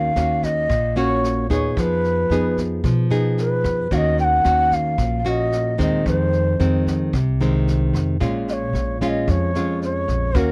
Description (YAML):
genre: bossa nova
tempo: 112 BPM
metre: 4/4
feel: straight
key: Eb minor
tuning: A4 = 438 Hz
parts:
  - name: breathy bansuri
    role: melody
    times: 0.0-10.5 s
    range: Bb4 to G5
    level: -24 LUFS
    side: equal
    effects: none
  - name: nylon-string guitar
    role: accompaniment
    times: 0.0-10.5 s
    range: F2 to Ab4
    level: -24 LUFS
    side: equal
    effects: none
  - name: upright bass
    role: bass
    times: 0.0-10.5 s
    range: Bb1 to Cb3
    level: -26 LUFS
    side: equal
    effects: none
  - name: jazz brush drum kit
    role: drums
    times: 0.2-10.5 s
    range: kick drum, rim click, snare drum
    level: -31 LUFS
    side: equal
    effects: none
room: little or no reverb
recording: dry, close 1970s-style studio recording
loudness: -20 LUFS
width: mono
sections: 0.0-10.5 A section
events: none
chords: 0.0 Ebm7; 1.8 Fm7b5; 3.9 Ebm7; 6.1 Fm7; 8.2 Bbm7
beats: 0.16 0.70 1.23 | 1.77 2.31 2.84 3.38 | 3.91 4.45 4.99 5.52 | 6.06 6.59 7.13 7.67 | 8.20 8.74 9.28 9.81 | 10.35